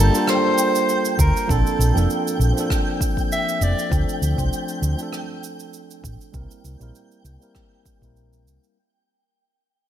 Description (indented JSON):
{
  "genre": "sunset chillout",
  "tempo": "99 BPM",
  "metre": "4/4",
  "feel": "swing 54% on 16ths",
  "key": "unclear",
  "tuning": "A4 = 441 Hz",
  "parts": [
    { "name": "warm soprano saxophone", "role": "melody", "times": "0.0-3.9 s", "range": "A4 to E5", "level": "-24 LUFS", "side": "equal", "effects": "ping-pong delay" },
    { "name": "tine electric piano", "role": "accompaniment", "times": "0.0-8.8 s", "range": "F3 to C5", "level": "-25 LUFS", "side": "moving between left 5 dB and right 7 dB", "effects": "auto-pan, low-pass filter, ping-pong delay" },
    { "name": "hollow-body short-scale fingered electric bass", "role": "bass", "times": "0.0-8.6 s", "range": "F1 to D2", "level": "-19 LUFS", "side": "equal", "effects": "none" },
    { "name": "twinkling granular texture", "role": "texture", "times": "0.0-8.8 s", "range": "G5", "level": "-30 LUFS", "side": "equal", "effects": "built-in reverb, analog chorus" },
    { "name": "cabasa and rim click", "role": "drums", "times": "0.1-8.7 s", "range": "none", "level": "-30 LUFS", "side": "right 4 dB", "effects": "gated reverb" },
    { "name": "electronic kick drum", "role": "drums", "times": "1.2-8.1 s", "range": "none", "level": "-24 LUFS", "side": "equal", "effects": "none" }
  ],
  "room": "light reverb, studio reverb",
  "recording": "bright 1980s-style digital production",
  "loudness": "-18 LUFS",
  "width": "side -10 dB against mid",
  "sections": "0.0-8.8 A section",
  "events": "fade-out 0.0-8.8; filter sweep on fingered electric bass 0.0-8.8; filter sweep on tine electric piano 0.0-8.8",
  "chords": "0.0 Gm9; 1.5 Bbmaj9; 3.9 Dm7; 6.3 C7"
}